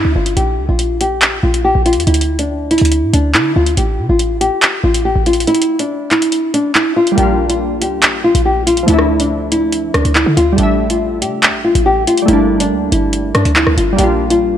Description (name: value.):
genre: hip hop, drill.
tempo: 141 BPM.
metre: 4/4.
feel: half-time.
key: unclear.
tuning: A4 = 435 Hz.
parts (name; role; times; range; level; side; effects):
nylon-string guitar; melody; 0.0-14.6 s; D4 to G4; -15 LUFS; left 1 dB; low-pass filter.
short 808-style bass; bass; 0.0-14.6 s; G1 to D3; -16 LUFS; right 1 dB; none.
drill drum kit; drums; 0.3-14.4 s; handclaps, hi-hat, rim click; -16 LUFS; equal; vintage 12-bit sampler grit.
glassy digital keys; accompaniment; 7.1-14.6 s; F3 to E5; -17 LUFS; equal; chorus, low-pass filter.
room: light reverb, digital ambience.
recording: none.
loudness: -11 LUFS.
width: side -10 dB against mid.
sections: 0.0-7.2 A section; 7.2-14.6 B section.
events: kick muted 5.5-7.2.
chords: 0.4 Bb5; 2.1 Dsus2; 3.8 A7(#5, no3); 5.5 N.C.; 7.2 Bb6; 8.9 Dmadd9; 10.6 A7sus4; 12.3 Gmadd9; 14.0 Bb6.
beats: | 0.37 0.79 1.22 1.65 | 2.07 2.50 2.92 3.35 | 3.77 4.20 4.62 5.05 | 5.47 5.90 6.33 6.75 | 7.18 7.60 8.03 8.45 | 8.88 9.30 9.73 10.15 | 10.58 11.01 11.43 11.86 | 12.28 12.71 13.13 13.56 | 13.98 14.41.